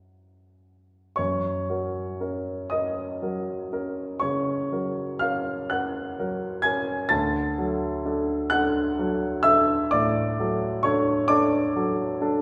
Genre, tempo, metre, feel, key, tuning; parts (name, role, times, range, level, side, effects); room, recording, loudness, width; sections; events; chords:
classical, romantic nocturne for solo piano; 34-44 BPM (dotted quarters); 12/8; rubato; A4 = 441 Hz
warm grand piano; solo; 0.0-12.4 s; D2 to A6; -25 LUFS; equal
wet recital hall reverb, RT60 1.7 s; recorded in a church or concert hall; -25 LUFS; mono
0.0-1.2 A section; 1.2-12.4 A section
0.0 F#; 7.1 D